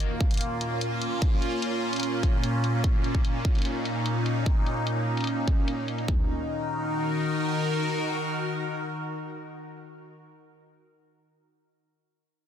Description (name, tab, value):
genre	heavy wobble dubstep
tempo	148 BPM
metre	4/4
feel	half-time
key	Eb minor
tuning	A4 = 440 Hz
part	evolving wavetable pad	sustained chords	0.0-10.1 s	Bb2 to Bb4	-27 LUFS	equal	phaser, built-in reverb, sidechain pumping
part	electronic hi-hat	drums	0.0-6.1 s	none	-34 LUFS	left 2 dB	low-pass filter on hats, low-pass filter on snare, low-pass filter on room
part	dubstep drum kit	drums	0.2-6.2 s	kick drum, toms	-24 LUFS	equal	none
room	light reverb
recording	dense, heavily limited modern master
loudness	-25 LUFS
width	side -9 dB against mid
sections	0.0-6.1 A section; 6.1-9.3 B section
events	none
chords	0.0 Bbm; 6.1 Ebm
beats	0.00 0.41 0.81 | 1.22 1.62 2.03 2.44 | 2.84 3.25 3.65 4.06 | 4.46 4.87 5.27 5.68 | 6.08 6.49 6.89 7.30 | 7.71 8.11 8.52 8.92